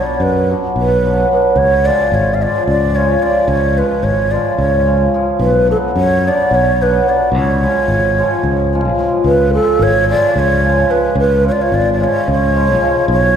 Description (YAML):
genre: balkan folk, Balkan wedding band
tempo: 219 BPM (eighths)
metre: 7/8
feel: straight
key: unclear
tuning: A4 = 437 Hz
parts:
  - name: breathy mellow low ney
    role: melody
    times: 0.0-13.4 s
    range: A4 to E#5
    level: -15 LUFS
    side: right 1 dB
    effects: none
  - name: cimbalom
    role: accompaniment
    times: 0.0-13.1 s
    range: E#3 to F#4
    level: -16 LUFS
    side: left 1 dB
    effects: none
  - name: modern bright fingered electric bass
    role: bass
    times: 0.2-13.4 s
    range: G#1 to F#2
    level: -17 LUFS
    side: equal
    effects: none
room: wet concert hall reverb, RT60 2.1 s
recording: recorded in a church or concert hall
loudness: -11 LUFS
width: side -8 dB against mid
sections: 0.0-9.2 A section; 9.2-13.4 A section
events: none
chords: 0.0 Bm; 1.6 C#; 5.4 Bm; 7.3 C#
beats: 0.19 0.46 0.74 1.01 1.29 | 1.56 1.83 2.11 2.38 2.66 2.93 3.21 | 3.48 3.75 4.03 4.30 4.58 4.85 5.12 | 5.40 5.67 5.95 6.22 6.49 6.77 7.04 | 7.32 7.59 7.86 8.14 8.41 8.69 8.96 | 9.23 9.51 9.78 10.06 10.33 10.61 10.88 | 11.15 11.43 11.70 11.98 12.25 12.53 12.80 | 13.08 13.35